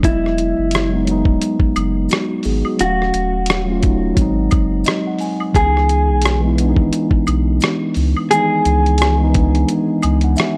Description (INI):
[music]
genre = lo-fi hip hop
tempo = 87 BPM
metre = 4/4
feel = swing 57% on 16ths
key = C# minor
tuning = A4 = 440 Hz
[part]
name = mellow electric guitar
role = melody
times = 0.0-9.2 s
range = E4 to G#4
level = -20 LUFS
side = equal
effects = spring reverb, low-pass filter, tape echo
[part]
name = mellow tine electric piano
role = accompaniment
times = 0.0-10.6 s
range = D#3 to G#5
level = -21 LUFS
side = equal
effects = low-pass filter
[part]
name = saturated sub bass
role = bass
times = 0.0-10.4 s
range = D#1 to C#2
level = -20 LUFS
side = equal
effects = none
[part]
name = lo-fi sampler-style drum kit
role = drums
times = 0.0-10.6 s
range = hi-hat, kick drum, rim click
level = -20 LUFS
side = equal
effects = none
[part]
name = maracas and woodblock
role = percussion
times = 0.0-10.6 s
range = none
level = -30 LUFS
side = equal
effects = none
[sound]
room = little or no reverb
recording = dry, gritty hardware recording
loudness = -16 LUFS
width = mono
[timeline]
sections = 0.0-10.6 A section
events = break 9.7-10.6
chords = 0.0 Emaj9; 2.8 D#m7b5; 4.2 G#7; 5.5 C#m7